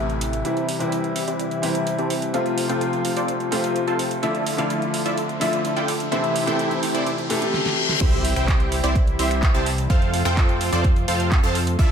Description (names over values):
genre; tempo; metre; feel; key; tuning
EDM, festival progressive house; 127 BPM; 4/4; straight; C major; A4 = 439 Hz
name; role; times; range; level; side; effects
clear baby grand piano; accompaniment; 0.0-8.0 s; C3 to E5; -25 LUFS; left 2 dB; sidechain pumping, tape echo
lush unison pad; sustained chords; 0.0-11.9 s; C3 to D5; -29 LUFS; equal; chorus, sidechain pumping
fat analog bass; bass; 0.0-0.4, 8.0-11.9 s; A1 to F2; -25 LUFS; right 1 dB; sidechain pumping
noise sweep, riser, reverse cymbal and impact; sound effects; 0.0-9.9 s; none; -29 LUFS; left 1 dB; none
pop drum kit; drums; 0.1-11.9 s; crash cymbal, finger snaps, handclaps, hi-hat, snare drum; -30 LUFS; right 2 dB; none
supersaw stab; riff; 0.5-11.9 s; C4 to A5; -25 LUFS; right 1 dB; sidechain pumping, low-pass filter, tape echo
electronic kick drum; drums; 8.0-11.9 s; none; -18 LUFS; equal; overdrive
room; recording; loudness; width
wet plate reverb, RT60 1.4 s, digital ambience; dreamy mix soaked in reverb; -19 LUFS; side -7 dB against mid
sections
0.5-8.0 A section; 8.0-11.9 B section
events
noise sweep 0.0-0.5; build-up 0.5-8.0; riser 0.5-8.0; filter sweep on supersaw synth 0.5-8.0; reverse cymbal 7.1-8.0; drum fill 7.5-8.0; drop 8.0-11.9; impact 8.0-9.9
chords
0.5 C; 2.3 F; 4.2 Dmadd9; 6.1 C; 9.9 F